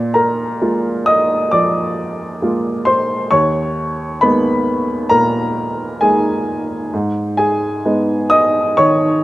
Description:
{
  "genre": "neoclassical minimalist piano",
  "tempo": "66 BPM",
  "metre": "4/4",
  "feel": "rubato",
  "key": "G# minor",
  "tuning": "A4 = 440 Hz",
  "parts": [
    { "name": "warm upright piano", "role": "solo", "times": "0.0-9.2 s", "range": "D#2 to D#6", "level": "-14 LUFS", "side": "equal", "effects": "slapback echo" }
  ],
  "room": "little or no reverb",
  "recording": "recorded outdoors, with no room sound",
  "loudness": "-14 LUFS",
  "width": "side -16 dB against mid",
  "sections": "0.0-9.2 A section",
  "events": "none",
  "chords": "0.0 A#7; 3.3 D#sus4; 6.9 G#m"
}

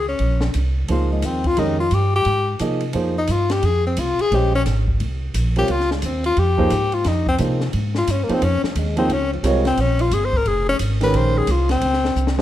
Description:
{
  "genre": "modal jazz",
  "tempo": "176 BPM",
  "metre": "4/4",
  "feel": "swing 63% on 8ths",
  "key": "Bb dorian",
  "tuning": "A4 = 440 Hz",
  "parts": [
    { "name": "warm tenor saxophone", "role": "melody", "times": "0.0-12.4 s", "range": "F3 to C5", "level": "-21 LUFS", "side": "left 3 dB", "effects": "none" },
    { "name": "upright bass", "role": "bass", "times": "0.0-12.4 s", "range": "F1 to C3", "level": "-21 LUFS", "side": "right 1 dB", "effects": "none" },
    { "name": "open jazz drum kit", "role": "drums", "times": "0.2-12.4 s", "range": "hi-hat, kick drum, ride cymbal, snare drum", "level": "-29 LUFS", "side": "left 1 dB", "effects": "none" },
    { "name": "warm upright piano", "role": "accompaniment", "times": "0.9-12.4 s", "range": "Eb3 to Eb5", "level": "-23 LUFS", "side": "right 3 dB", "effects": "none" }
  ],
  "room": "light reverb",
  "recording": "dark, warm production",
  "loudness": "-17 LUFS",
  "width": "side -12 dB against mid",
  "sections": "0.0-12.4 A section",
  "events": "tenor saxophone solo 0.0-12.4; drum fill 12.2",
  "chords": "0.0 Bbm9"
}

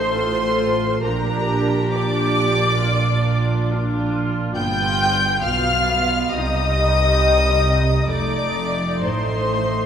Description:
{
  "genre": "classical, slow romantic movement for string orchestra",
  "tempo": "68 BPM",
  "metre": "4/4",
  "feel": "rubato",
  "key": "unclear",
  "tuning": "A4 = 441 Hz",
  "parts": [
    { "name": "dark chamber violin section", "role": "melody", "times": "0.0-9.9 s", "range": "Bb5 to G6", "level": "-23 LUFS", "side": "left 2 dB", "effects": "none" },
    { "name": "dark studio violin section", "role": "second line", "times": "0.0-9.9 s", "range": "Bb4 to G5", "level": "-23 LUFS", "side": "left 2 dB", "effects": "none" },
    { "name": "warm studio viola section", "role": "accompaniment", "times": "0.0-9.9 s", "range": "G3 to A4", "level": "-25 LUFS", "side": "right 1 dB", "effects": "none" },
    { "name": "dark studio cello section", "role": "bass", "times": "0.0-9.9 s", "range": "F2 to C3", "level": "-24 LUFS", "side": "right 1 dB", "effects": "none" },
    { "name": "rich studio double bass section", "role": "bass", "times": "0.0-9.9 s", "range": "F1 to C2", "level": "-24 LUFS", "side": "right 2 dB", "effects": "none" }
  ],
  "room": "wet scoring stage reverb, RT60 1.8 s",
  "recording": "heard from further back in the room",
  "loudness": "-17 LUFS",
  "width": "side -8 dB against mid",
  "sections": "0.0-9.9 A section",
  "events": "none",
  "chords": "0.0 F7/A; 1.0 Bb; 4.6 G7; 6.3 Cm; 8.1 F7"
}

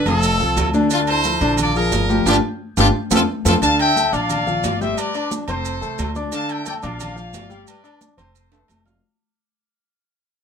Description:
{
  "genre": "latin, salsa",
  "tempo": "177 BPM",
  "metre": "4/4",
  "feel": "straight",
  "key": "unclear",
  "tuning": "A4 = 440 Hz",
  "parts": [
    { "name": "clear horn section", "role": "melody", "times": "0.0-3.5 s", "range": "A3 to D5", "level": "-20 LUFS", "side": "equal", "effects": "none" },
    { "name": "clear concert grand piano", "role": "accompaniment", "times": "0.1-9.0 s", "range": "D3 to F6", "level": "-22 LUFS", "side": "left 2 dB", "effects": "none" },
    { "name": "upright bass", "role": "bass", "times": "0.1-9.0 s", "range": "F1 to F2", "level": "-23 LUFS", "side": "right 1 dB", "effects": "none" },
    { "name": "agogo bells and timbales", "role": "percussion", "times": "0.1-8.9 s", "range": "none", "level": "-28 LUFS", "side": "right 4 dB", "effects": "none" },
    { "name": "congas", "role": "percussion", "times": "0.1-9.0 s", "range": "none", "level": "-25 LUFS", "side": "left 1 dB", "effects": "none" },
    { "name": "maracas", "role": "percussion", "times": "0.1-9.0 s", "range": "none", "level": "-28 LUFS", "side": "right 9 dB", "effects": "none" },
    { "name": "clear trumpet section", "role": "melody", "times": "3.6-8.8 s", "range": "A4 to A5", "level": "-22 LUFS", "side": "left 2 dB", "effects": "none" }
  ],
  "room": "moderate studio reverb, RT60 0.5 s",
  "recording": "minimal, uncompressed stereo recording",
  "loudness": "-16 LUFS",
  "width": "side -7 dB against mid",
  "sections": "0.0-3.6 A section; 3.6-9.0 B section",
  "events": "band accent 2.3-3.6; drum fill 2.6-3.6, 8.5-9.0; fade-out 3.6-9.0",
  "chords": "0.2 F; 0.9 Dm7; 1.6 Bb7; 2.3 G5; 2.9 F; 3.6 Dm; 4.3 Bb; 5.0 G7; 5.7 F; 6.3 Dm; 7.0 Bb; 7.7 G7; 8.4 F"
}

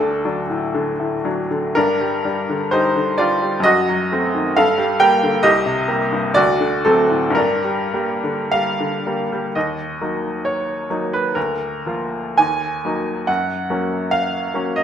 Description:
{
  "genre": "classical, romantic character piece for solo piano",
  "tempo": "50-73 BPM",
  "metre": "2/4",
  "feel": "rubato",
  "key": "G minor, Eb minor from 9.5 s",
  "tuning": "A4 = 439 Hz",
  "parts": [
    { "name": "bright upright piano", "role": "solo", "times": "0.0-14.8 s", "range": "C2 to Ab5", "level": "-16 LUFS", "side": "equal", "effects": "none" }
  ],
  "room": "wet recital hall reverb, RT60 1.4 s",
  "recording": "none",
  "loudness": "-17 LUFS",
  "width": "side -9 dB against mid",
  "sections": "0.0-9.5 A section; 9.5-14.8 B section",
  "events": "none",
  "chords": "0.0 D; 1.8 Gm; 3.6 F#dim7; 4.5 Gm; 5.4 Cm7; 6.4 D; 7.4 Gm; 9.5 Ebm; 11.4 Bb/D; 12.4 Ebm; 13.3 Gb"
}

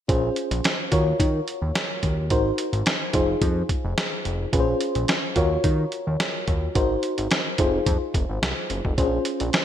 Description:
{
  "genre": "early-eighties boogie funk",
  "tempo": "108 BPM",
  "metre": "4/4",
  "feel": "straight",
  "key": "Bb minor",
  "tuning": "A4 = 441 Hz",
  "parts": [
    { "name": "FM electric piano with auto-pan", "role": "accompaniment", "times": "0.1-9.6 s", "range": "Db4 to Db5", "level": "-25 LUFS", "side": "left 1 dB", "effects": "none" },
    { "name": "fat analog bass", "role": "bass", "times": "0.1-9.5 s", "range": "F1 to Eb3", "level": "-26 LUFS", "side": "equal", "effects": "none" },
    { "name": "lo-fi sampler-style drum kit", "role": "drums", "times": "0.1-9.6 s", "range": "hi-hat, kick drum, snare drum", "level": "-24 LUFS", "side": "equal", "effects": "gated reverb" }
  ],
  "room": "moderate lush hall reverb, RT60 1.9 s, digital ambience",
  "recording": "bright 1980s-style digital production",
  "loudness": "-21 LUFS",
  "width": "side -10 dB against mid",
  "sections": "0.1-9.6 A section",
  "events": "none",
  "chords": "0.1 Bbm9; 0.9 Ebm9; 2.3 Ab9; 3.1 Fm7; 4.5 Bbm9; 5.4 Ebm9; 6.8 Ab9; 7.6 Fm7; 9.0 Bbm9"
}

